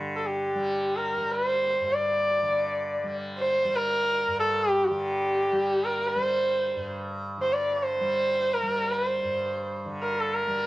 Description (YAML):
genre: indian classical, Hindustani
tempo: free time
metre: none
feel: none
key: G raga bhimpalasi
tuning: A4 = 440 Hz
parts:
  - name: tanpura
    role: drone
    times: 0.0-10.7 s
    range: G2 to G3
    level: -34 LUFS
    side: equal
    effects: none
  - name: warm sarangi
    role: melody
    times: 0.2-10.7 s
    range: G4 to D5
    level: -24 LUFS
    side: equal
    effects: none
room: light reverb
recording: worn, warbling old tape, cassette tape, warbly pitch drift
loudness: -24 LUFS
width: side -17 dB against mid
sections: 0.0-10.7 A section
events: none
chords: none